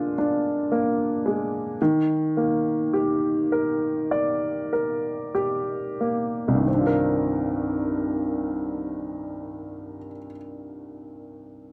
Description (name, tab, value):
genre	folk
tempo	44-57 BPM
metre	4/4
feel	straight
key	C minor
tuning	A4 = 440 Hz
part	clear upright piano	melody	0.0-11.7 s	C2 to D5	-26 LUFS	equal	none
room	light reverb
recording	none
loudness	-25 LUFS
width	mono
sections	0.0-6.7 A section; 6.7-11.7 B section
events	slowing down 0.0-6.7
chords	0.0 Bb7/D; 1.8 Ebmaj7; 6.7 Cm11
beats	0.71 | 1.80 2.93 4.11 5.36 | 6.68 8.04 9.40 10.75